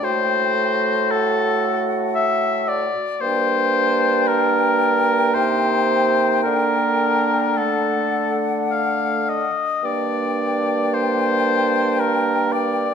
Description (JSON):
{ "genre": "classical, slow romantic movement for wind quintet", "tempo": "55 BPM", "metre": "3/4", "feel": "uneven beats, rubato", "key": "G minor", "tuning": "A4 = 440 Hz", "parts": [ { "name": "mellow concert flute", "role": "melody", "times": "0.0-12.9 s", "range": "F#5 to G5", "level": "-26 LUFS", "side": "left 7 dB", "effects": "none" }, { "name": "clear oboe", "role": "second line", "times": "0.0-12.9 s", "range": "A4 to F5", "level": "-20 LUFS", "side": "left 3 dB", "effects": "none" }, { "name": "dark French horn", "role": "accompaniment", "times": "0.0-12.9 s", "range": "A3 to Bb3", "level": "-27 LUFS", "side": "right 2 dB", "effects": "none" }, { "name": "warm clarinet", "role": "accompaniment", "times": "0.0-12.9 s", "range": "D4 to F#4", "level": "-27 LUFS", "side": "right 10 dB", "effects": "none" }, { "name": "warm bassoon", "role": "bass", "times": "0.0-12.9 s", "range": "G2 to D3", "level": "-24 LUFS", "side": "right 3 dB", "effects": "none" } ], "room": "wet recital hall reverb, RT60 1.9 s", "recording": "none", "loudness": "-17 LUFS", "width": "side -7 dB against mid", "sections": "0.0-12.9 A section", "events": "none", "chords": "0.0 F#dim/A; 3.2 Gm; 5.4 Cm7; 6.5 D; 9.8 Gm" }